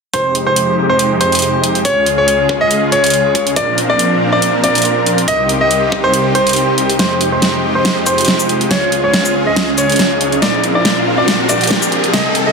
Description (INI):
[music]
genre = heavy wobble dubstep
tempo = 140 BPM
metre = 4/4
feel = swing 54% on 16ths, half-time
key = F minor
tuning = A4 = 444 Hz
[part]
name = bright concert grand piano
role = melody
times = 0.1-12.5 s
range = C5 to Eb5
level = -15 LUFS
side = equal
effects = low-pass filter, ping-pong delay
[part]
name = supersaw chords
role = sustained chords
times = 0.1-12.5 s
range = C2 to Bb4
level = -17 LUFS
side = equal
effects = sidechain pumping, low-pass filter
[part]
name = dubstep drum kit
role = drums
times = 0.1-12.4 s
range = hi-hat, shaker, snare drum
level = -16 LUFS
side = right 1 dB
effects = small room ambience
[part]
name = electronic kick drum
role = drums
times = 0.1-6.0 s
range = none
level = -23 LUFS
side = left 1 dB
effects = high-pass filter on kick, small room ambience
[part]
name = ethereal airy pad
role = texture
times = 1.4-12.5 s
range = C4 to C6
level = -21 LUFS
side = right 2 dB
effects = ensemble chorus, built-in reverb, sidechain pumping
[part]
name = riser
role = sound effects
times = 9.0-12.5 s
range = none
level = -21 LUFS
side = equal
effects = none
[sound]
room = moderate plate reverb, RT60 1.6 s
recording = dense, heavily limited modern master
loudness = -11 LUFS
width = side -4 dB against mid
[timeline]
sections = 0.1-7.0 A section; 7.0-12.5 B section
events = fade-in on ambient pad 0.1-7.0; filter sweep on supersaw synth 0.1-7.0; kick drops out 6.1-7.0; build-up 7.0-12.5; drum fill 7.0-12.5; filter sweep on grand piano 7.0-12.5; riser 9.0-12.5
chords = 0.1 Fm7; 1.9 Db; 3.6 Bbadd9; 5.3 Cm; 7.0 Fm7; 8.7 Db; 10.4 Bbadd9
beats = | 0.14 0.56 0.99 1.42 | 1.85 2.28 2.71 3.14 | 3.56 3.99 4.42 4.85 | 5.28 5.71 6.14 6.56 | 6.99 7.42 7.85 8.28 | 8.71 9.14 9.56 9.99 | 10.42 10.85 11.28 11.71 | 12.14